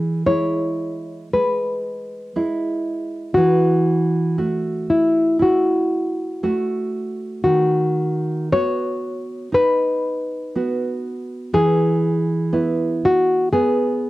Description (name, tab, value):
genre	romantic duo for nylon-string guitar and classical guitar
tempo	59 BPM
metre	4/4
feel	rubato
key	E major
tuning	A4 = 440 Hz
part	nylon-string guitar	melody	0.0-14.1 s	E4 to C#5	-19 LUFS	left 2 dB	cassette tape
part	nylon-string guitar	accompaniment	0.0-14.1 s	D#3 to F#4	-21 LUFS	right 2 dB	cassette tape
room	moderate booth ambience, RT60 0.2 s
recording	home recording on cassette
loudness	-17 LUFS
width	side -17 dB against mid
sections	0.0-14.1 A section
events	none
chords	0.0 E; 3.4 F#m7/E; 7.4 B/D#; 11.5 E